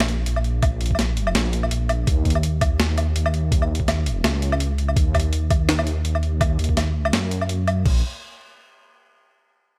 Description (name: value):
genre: half-time drum and bass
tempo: 166 BPM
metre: 4/4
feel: swing 56% on 16ths, half-time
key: unclear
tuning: A4 = 441 Hz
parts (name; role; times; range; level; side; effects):
- dark detuned saw bass; bass; 0.0-8.0 s; Bb1 to Gb2; -24 LUFS; equal; none
- boom bap sampler-style drum kit; drums; 0.0-7.9 s; crash cymbal, hi-hat, snare drum, woodblock; -27 LUFS; equal; studio reverb
- electronic kick drum; drums; 0.6-7.9 s; none; -24 LUFS; equal; studio reverb
room: little or no reverb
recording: none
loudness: -21 LUFS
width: mono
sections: 0.0-7.9 A section; 7.9-9.3 B section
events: none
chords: none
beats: 0.27 | 0.63 0.99 1.35 1.71 | 2.07 2.43 2.80 3.16 | 3.52 3.88 4.24 4.60 | 4.96 5.33 5.69 6.05 | 6.41 6.77 7.13 7.49 | 7.86